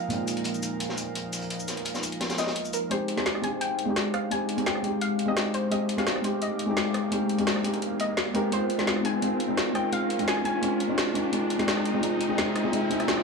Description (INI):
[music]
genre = liquid drum and bass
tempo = 171 BPM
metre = 4/4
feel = straight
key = F dorian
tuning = A4 = 441 Hz
[part]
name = soft round pluck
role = melody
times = 0.0-13.2 s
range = Bb4 to Ab5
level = -33 LUFS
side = left 1 dB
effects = chorus, tape echo
[part]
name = felt-muted upright piano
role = accompaniment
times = 0.0-13.2 s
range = Bb2 to G4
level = -28 LUFS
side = equal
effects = tape echo
[part]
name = airy breathy pad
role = sustained chords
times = 0.0-13.2 s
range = F3 to D6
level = -32 LUFS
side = left 3 dB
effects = chorus
[part]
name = crunchy breakbeat drum kit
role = drums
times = 0.1-2.8 s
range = hi-hat, snare drum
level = -34 LUFS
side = equal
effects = high-pass filter on hats, high-pass filter on snare, high-pass filter on room
[part]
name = drum and bass drum kit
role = drums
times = 0.1-13.2 s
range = cabasa, hi-hat, rim click, snare drum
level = -31 LUFS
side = left 1 dB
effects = none
[part]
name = riser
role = sound effects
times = 6.5-13.2 s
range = none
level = -33 LUFS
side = left 1 dB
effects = none
[sound]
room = moderate plate reverb, RT60 1.9 s, studio ambience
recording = small room ambience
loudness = -24 LUFS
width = side -4 dB against mid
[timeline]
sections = 0.0-2.9 A section; 2.9-13.2 B section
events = build-up 2.9-13.2; filter sweep on analog synth pad 2.9-13.2; riser 6.5-13.2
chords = 0.0 Bb7sus4; 2.9 Fm7; 8.5 Bb7sus4